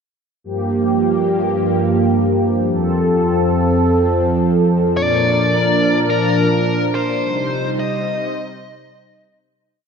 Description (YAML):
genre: synthwave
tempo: 106 BPM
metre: 4/4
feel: straight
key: G minor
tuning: A4 = 439 Hz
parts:
  - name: warm analog pad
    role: sustained chords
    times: 0.4-9.5 s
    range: F2 to C5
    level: -15 LUFS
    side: equal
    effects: chorus
  - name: bluesy overdriven lead guitar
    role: melody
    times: 5.0-9.4 s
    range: Bb4 to Eb5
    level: -19 LUFS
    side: left 1 dB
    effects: distortion, analog delay
room: wet lush hall reverb, RT60 2.8 s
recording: dreamy mix soaked in reverb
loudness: -14 LUFS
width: side -6 dB against mid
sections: 0.4-9.5 verse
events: fade-out 6.5-9.5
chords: 0.4 Gm7; 2.7 F; 5.0 Bb; 7.2 Cm